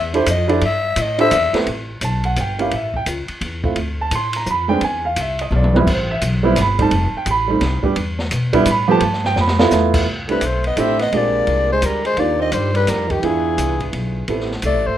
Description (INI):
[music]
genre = jazz, small-group swing and bop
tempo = 171 BPM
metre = 3/4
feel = swing 64% on 8ths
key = unclear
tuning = A4 = 440 Hz
[part]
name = growling soprano saxophone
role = melody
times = 0.0-1.6, 10.3-15.0 s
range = G4 to E5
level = -19 LUFS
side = left 4 dB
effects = none
[part]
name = upright bass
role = bass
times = 0.0-15.0 s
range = F1 to B2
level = -22 LUFS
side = equal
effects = none
[part]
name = warm grand piano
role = accompaniment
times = 0.1-14.5 s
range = F3 to C6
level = -19 LUFS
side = right 3 dB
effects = none
[part]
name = open jazz drum kit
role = drums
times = 0.1-14.7 s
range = crash cymbal, hi-hat, kick drum, ride cymbal, snare drum, toms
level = -24 LUFS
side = equal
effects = none
[part]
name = clear tenor saxophone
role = second line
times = 10.3-15.0 s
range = Eb3 to C4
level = -24 LUFS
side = right 5 dB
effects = none
[sound]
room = moderate studio reverb, RT60 0.8 s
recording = minimal, uncompressed stereo recording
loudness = -15 LUFS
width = side -11 dB against mid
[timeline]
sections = 0.0-1.7 A section; 1.7-10.1 A section; 10.1-15.0 B section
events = soprano saxophone solo 0.0-1.7; drum fill 5.5-5.9, 9.4-9.7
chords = 0.0 C69; 1.7 Asus2; 2.7 A; 3.8 Dm7; 4.8 E5; 5.9 Am9; 6.9 Fadd9; 8.0 Em; 9.0 G13; 10.1 C69; 11.1 Bb13; 12.2 Ebmaj9; 13.2 E7b9; 14.3 Am7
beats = 0.27 | 0.61 0.96 1.32 | 1.67 2.02 2.37 | 2.72 3.07 3.42 | 3.77 4.12 4.46 | 4.82 5.17 5.51 | 5.86 6.21 6.56 | 6.91 7.26 7.61 | 7.96 8.31 8.66 | 9.01 9.36 9.71 | 10.06 10.42 10.77 | 11.12 11.47 11.82 | 12.17 12.53 12.88 | 13.23 13.58 13.93 | 14.29 14.64